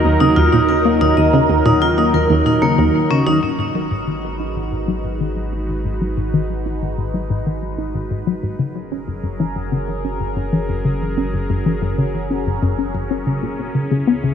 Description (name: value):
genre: ambient, sequencer-driven space music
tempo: 93 BPM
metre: 4/4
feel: straight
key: Eb minor, G# minor from 3.4 s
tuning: A4 = 441 Hz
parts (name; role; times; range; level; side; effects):
- phased analog pad; sustained chords; 0.0-14.3 s; C#3 to B4; -21 LUFS; right 1 dB; phaser, chorus
- tight sequenced synth; riff; 0.0-14.3 s; Eb2 to D#4; -19 LUFS; left 1 dB; chorus, tape echo
- warm sub bass; bass; 0.0-14.3 s; F#1 to Eb2; -27 LUFS; equal; none
- vibraphone with medium mallets; arpeggios; 0.2-3.3 s; Bb3 to Eb5; -20 LUFS; left 2 dB; auto-pan, tape echo
room: wet huge ambient reverb, RT60 7.9 s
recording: cassette tape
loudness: -16 LUFS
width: side -8 dB against mid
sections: 0.0-3.4 A section; 3.4-14.3 B section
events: fade-in on analog synth pad 3.4-14.3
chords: 0.0 Ebm; 3.4 G#m7; 8.6 F#add9; 13.8 C#m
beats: 0.21 | 0.85 1.50 2.14 2.79 | 3.43 4.08 4.72 5.37 | 6.01 6.66 7.30 7.95 | 8.59 9.24 9.88 10.53 | 11.17 11.82 12.46 13.11 | 13.75